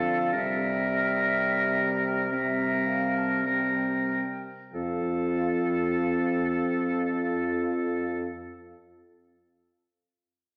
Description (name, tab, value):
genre	classical, slow romantic movement for wind quintet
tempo	45-65 BPM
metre	4/4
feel	rubato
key	F major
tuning	A4 = 439 Hz
part	mellow concert flute	melody	0.0-8.2 s	D5 to A5	-36 LUFS	equal	none
part	clear oboe	second line	0.0-8.2 s	A4 to Bb4	-32 LUFS	equal	none
part	warm French horn	accompaniment	0.0-8.2 s	F3 to G3	-37 LUFS	equal	none
part	warm clarinet	accompaniment	0.0-8.2 s	C4	-33 LUFS	equal	none
part	dark bassoon	bass	0.0-8.2 s	F2 to D3	-35 LUFS	equal	none
room	wet concert hall reverb, RT60 1.9 s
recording	none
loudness	-27 LUFS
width	mono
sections	0.0-4.7 A section; 4.7-9.7 B section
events	slowing down 0.0-4.7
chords	0.3 C7; 4.7 F